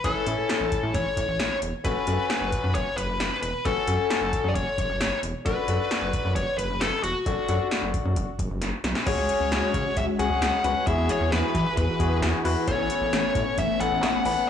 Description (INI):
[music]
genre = synth-pop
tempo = 133 BPM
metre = 4/4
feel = straight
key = F# minor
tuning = A4 = 440 Hz
[part]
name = nasal lead guitar with a parked wah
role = melody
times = 0.0-14.5 s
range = F#4 to F#5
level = -27 LUFS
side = left 2 dB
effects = overdrive, analog delay
[part]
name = bright concert grand piano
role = accompaniment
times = 0.0-14.5 s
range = B3 to B4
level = -29 LUFS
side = left 6 dB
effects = none
[part]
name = rubbery square bass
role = bass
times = 0.0-14.4 s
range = E1 to E3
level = -28 LUFS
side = equal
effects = none
[part]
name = electro analog drum machine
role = drums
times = 0.0-14.4 s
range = crash cymbal, handclaps, hi-hat, kick drum, snare drum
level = -29 LUFS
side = equal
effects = none
[part]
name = soft string machine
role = sustained chords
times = 9.1-14.5 s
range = E3 to B4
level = -30 LUFS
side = left 1 dB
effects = ensemble chorus
[sound]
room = light reverb, digital ambience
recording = blown-out, overdriven recording, overdrive, small room ambience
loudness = -22 LUFS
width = side -8 dB against mid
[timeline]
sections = 0.0-9.1 A section; 9.1-14.5 B section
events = drum fill 8.6-9.1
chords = 0.0 A; 1.8 F#m; 5.5 D; 9.1 C#sus4; 10.9 Eadd9; 12.7 Aadd9